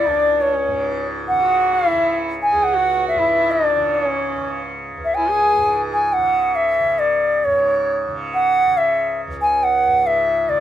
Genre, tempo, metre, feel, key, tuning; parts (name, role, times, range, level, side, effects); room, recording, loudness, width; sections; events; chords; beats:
indian classical, Hindustani; 136 BPM; 4/4; straight; C# raga bhairavi; A4 = 440 Hz
bright reedy bansuri; melody; 0.0-10.6 s; C#5 to G#5; -16 LUFS; equal
clear sarangi; second line; 0.0-5.9 s; C#4 to G#4; -25 LUFS; right 4 dB
tanpura; drone; 0.0-10.6 s; C#2 to C#3; -26 LUFS; right 2 dB
light reverb; minimal, uncompressed stereo recording; -16 LUFS; side -11 dB against mid
0.0-7.5 A section; 7.5-10.6 B section
| 0.41 0.86 1.30 1.74 | 2.19 2.63 3.07 3.51 | 3.95 4.39 4.83 5.28 | 5.71 6.15 6.59 7.03 | 7.47 7.91 8.34 8.78 | 9.21 9.65 10.09 10.52